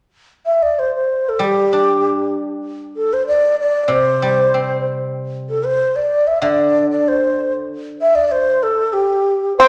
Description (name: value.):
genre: chinese traditional, Chinese chamber ensemble.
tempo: 96 BPM.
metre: 2/4.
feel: rubato.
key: G zhi mode.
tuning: A4 = 441 Hz.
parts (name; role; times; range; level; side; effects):
breathy xiao; melody; 0.5-9.7 s; G4 to E5; -18 LUFS; equal; none.
guzheng; accompaniment; 1.4-8.3 s; C3 to D4; -23 LUFS; equal; none.
pipa; second line; 9.6-9.7 s; C4; -9 LUFS; equal; none.
reedy large dizi; second line; 9.6-9.7 s; C5; -13 LUFS; equal; none.
room: wet recital hall reverb, RT60 1.5 s.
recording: none.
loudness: -17 LUFS.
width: mono.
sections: 0.1-9.7 A section.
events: none.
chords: none.